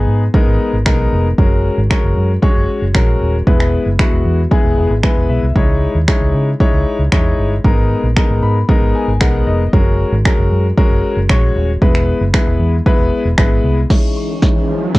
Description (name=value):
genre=dance-pop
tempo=115 BPM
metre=4/4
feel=straight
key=unclear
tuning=A4 = 440 Hz
part: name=clear grand piano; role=accompaniment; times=0.0-15.0 s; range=G#3 to B5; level=-18 LUFS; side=left 3 dB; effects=sidechain pumping, low-pass filter
part: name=vintage muted fingered electric bass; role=bass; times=0.0-13.8 s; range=D#1 to C#3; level=-16 LUFS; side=equal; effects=sidechain pumping
part: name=deep house drum kit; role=drums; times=0.3-15.0 s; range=crash cymbal, finger snaps, kick drum, snare drum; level=-14 LUFS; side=equal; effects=none
part: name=soft synth bell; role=melody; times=13.9-15.0 s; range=C#6 to E6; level=-36 LUFS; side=right 3 dB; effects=chorus, low-pass filter
part: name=ensemble organ-string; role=sustained chords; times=13.9-15.0 s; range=E3 to C#5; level=-23 LUFS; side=left 1 dB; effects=ensemble chorus, sidechain pumping, low-pass filter
part: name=riser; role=sound effects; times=14.3-15.0 s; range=none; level=-24 LUFS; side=right 4 dB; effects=none
room=light reverb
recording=cassette tape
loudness=-11 LUFS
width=side -20 dB against mid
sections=0.0-13.9 A section; 13.9-15.0 B section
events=grand piano fill 4.8-5.6, 8.2-9.7; build-up 13.9-15.0; drum fill 13.9-15.0; filter sweep 13.9-15.0; riser 14.3-15.0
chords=0.0 G#madd9; 1.4 F#add9; 3.5 E; 5.6 C#madd9; 7.6 G#madd9; 9.7 F#add9; 11.8 E; 13.9 C#madd9